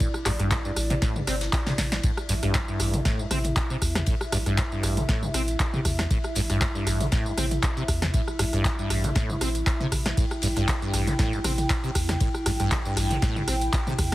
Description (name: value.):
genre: acid house.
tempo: 118 BPM.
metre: 4/4.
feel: swing 54% on 16ths.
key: A minor pentatonic.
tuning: A4 = 440 Hz.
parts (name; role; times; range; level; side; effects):
dark analog pad; sustained chords; 0.0-14.1 s; E4 to G5; -33 LUFS; equal; chorus, sidechain pumping.
acid bass, saw; riff; 0.0-14.1 s; G2 to C4; -29 LUFS; equal; ensemble chorus, sidechain pumping.
electro analog drum machine; drums; 0.0-14.1 s; handclaps, hi-hat, ride cymbal, rim click, snare drum, tambourine, toms; -28 LUFS; equal; none.
electronic kick drum; drums; 0.0-14.1 s; none; -27 LUFS; equal; none.
loose indie drum kit; drums; 0.0-14.1 s; ride cymbal, snare drum; -41 LUFS; left 4 dB; none.
round analog bass; bass; 0.3-14.1 s; G1 to E2; -29 LUFS; equal; sidechain pumping.
room: moderate studio reverb, RT60 0.5 s.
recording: heavily compressed radio sound, multiband compression.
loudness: -23 LUFS.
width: side -16 dB against mid.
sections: 0.0-14.1 A section.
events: drum fill 1.7-2.0.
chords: 0.0 A5.